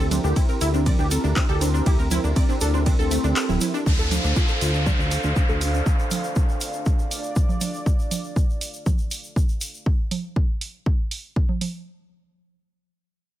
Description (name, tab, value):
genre	melodic techno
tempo	120 BPM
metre	4/4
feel	straight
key	D minor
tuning	A4 = 440 Hz
part	wide unison lead	melody	0.0-3.8 s	C4 to G4	-28 LUFS	equal	analog chorus, sidechain pumping, ping-pong delay
part	dark analog pad	sustained chords	0.0-9.8 s	D4 to F5	-32 LUFS	right 1 dB	chorus, sidechain pumping
part	wide unison pluck	arpeggios	0.0-5.8 s	A3 to D5	-29 LUFS	right 1 dB	sidechain pumping, digital delay
part	fat analog bass	bass	0.0-5.8 s	D1 to D2	-23 LUFS	equal	sidechain pumping
part	tube shaker	percussion	0.0-9.8 s	none	-36 LUFS	left 2 dB	none
part	punchy analog drum machine	drums	0.1-11.7 s	congas, handclaps, hi-hat, ride cymbal	-29 LUFS	right 4 dB	sidechain pumping on cymbals, sidechain pumping on hats, sidechain pumping on perc
part	electronic kick drum	drums	0.4-11.5 s	none	-21 LUFS	equal	none
part	downlifter	sound effects	3.9-7.9 s	none	-29 LUFS	equal	none
room	digital ambience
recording	none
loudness	-20 LUFS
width	side -13 dB against mid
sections	0.0-3.9 A section; 3.9-11.9 B section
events	drop 0.0-3.9; kick drops out 3.4-3.9; filter sweep on synth pluck 3.9-5.9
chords	0.0 C/D; 3.9 Dm7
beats	0.36 0.86 1.36 | 1.86 2.36 2.86 3.36 | 3.86 4.36 4.86 5.36 | 5.86 6.36 6.86 7.36 | 7.86 8.36 8.86 9.36 | 9.86 10.36 10.86 11.36